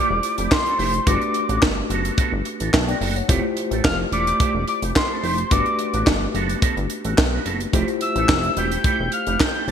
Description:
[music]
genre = early-eighties boogie funk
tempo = 108 BPM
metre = 4/4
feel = straight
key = unclear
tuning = A4 = 440 Hz
[part]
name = soft octave-layered synth lead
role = melody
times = 0.0-9.7 s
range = C6 to G6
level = -23 LUFS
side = left 1 dB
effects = chorus
[part]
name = mellow tine electric piano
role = accompaniment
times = 0.0-9.7 s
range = A3 to A5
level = -28 LUFS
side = left 4 dB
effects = medium stereo tremolo
[part]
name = electric guitar with an envelope filter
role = riff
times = 0.0-9.7 s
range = A3 to B4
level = -28 LUFS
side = right 7 dB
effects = ensemble chorus
[part]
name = chorused synth bass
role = bass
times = 0.1-9.7 s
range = E1 to B1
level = -25 LUFS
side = equal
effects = none
[part]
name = tight funk drum kit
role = drums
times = 0.2-9.7 s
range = handclaps, hi-hat, kick drum, snare drum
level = -21 LUFS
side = right 1 dB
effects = gated reverb
[sound]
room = moderate lush hall reverb, RT60 2.1 s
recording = bright 1980s-style digital production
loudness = -18 LUFS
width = side -8 dB against mid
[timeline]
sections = 0.0-9.7 A section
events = none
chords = 0.0 Fmaj9; 1.1 Gmaj9; 3.3 Fmaj9; 5.5 Gmaj9; 7.7 Fmaj9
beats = 0.51 | 1.07 1.62 2.18 2.73 | 3.29 3.85 4.40 4.96 | 5.51 6.07 6.62 7.18 | 7.74 8.29 8.85 9.40

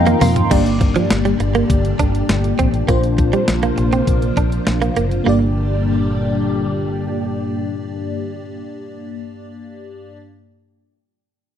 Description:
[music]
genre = 1980s-style pop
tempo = 101 BPM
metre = 4/4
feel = straight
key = G minor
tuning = A4 = 440 Hz
[part]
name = FM electric piano with soft pad layer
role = accompaniment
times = 0.0-10.2 s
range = G2 to C6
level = -21 LUFS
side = left 1 dB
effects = chorus, phaser
[part]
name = soft string machine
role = sustained chords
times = 0.0-8.4 s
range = Bb2 to G4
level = -24 LUFS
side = left 1 dB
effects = phaser, ensemble chorus
[part]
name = vintage muted fingered electric bass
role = bass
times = 0.0-9.1 s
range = F#1 to F2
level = -20 LUFS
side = equal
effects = none
[part]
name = direct-recorded clean electric guitar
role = riff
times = 0.1-5.4 s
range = F3 to D4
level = -21 LUFS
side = right 6 dB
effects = analog chorus, slapback echo
[part]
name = clean 12-bit digital drum machine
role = drums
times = 0.1-5.3 s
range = crash cymbal, hi-hat, kick drum, snare drum, toms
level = -19 LUFS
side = equal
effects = none
[sound]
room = little or no reverb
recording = dry, close 1970s-style studio recording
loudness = -15 LUFS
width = side -9 dB against mid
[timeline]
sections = 0.5-5.3 A section; 5.3-7.6 B section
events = FM electric piano fill 0.0-0.5; drum fill 0.0-0.5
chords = 0.0 F7sus4; 0.5 Gm; 2.9 Bbadd9; 5.3 Gm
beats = | 0.51 1.11 1.70 2.29 | 2.89 3.48 4.08 4.67 | 5.26 5.86 6.45 7.05

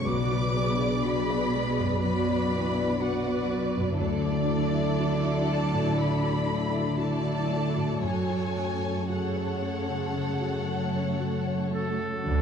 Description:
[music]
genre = cinematic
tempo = 56-62 BPM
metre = 4/4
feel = rubato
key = F# minor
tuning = A4 = 440 Hz
[part]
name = rich studio violin section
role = melody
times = 0.0-12.4 s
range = F#4 to D6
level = -35 LUFS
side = left 1 dB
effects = none
[part]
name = rich studio violin section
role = second line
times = 0.0-12.4 s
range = E4 to D5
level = -33 LUFS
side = left 2 dB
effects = none
[part]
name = warm concert grand piano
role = accompaniment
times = 0.0-12.4 s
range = B1 to E5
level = -31 LUFS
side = left 2 dB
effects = none
[part]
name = warm studio viola section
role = accompaniment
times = 0.0-12.4 s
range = C#3 to G#4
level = -33 LUFS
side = right 1 dB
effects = none
[part]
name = concert harp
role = arpeggios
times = 0.0-12.4 s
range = F#2 to B4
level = -35 LUFS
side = left 8 dB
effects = none
[part]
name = warm studio cello section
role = bass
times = 0.0-12.4 s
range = F#2 to D3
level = -30 LUFS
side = right 4 dB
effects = none
[part]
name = clear oboe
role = second line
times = 11.7-12.4 s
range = A4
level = -32 LUFS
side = right 2 dB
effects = none
[part]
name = warm studio double bass section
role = bass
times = 12.3-12.4 s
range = D2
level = -24 LUFS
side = right 3 dB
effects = none
[sound]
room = moderate scoring stage reverb, RT60 2.1 s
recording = dark, warm production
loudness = -25 LUFS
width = side -7 dB against mid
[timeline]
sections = 0.0-12.3 A section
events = none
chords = 0.1 Bm; 4.0 Dadd9; 8.0 F#m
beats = | 0.06 1.05 2.03 3.01 | 3.99 4.98 5.96 6.97 | 8.03 9.10 10.15 11.20 | 12.26

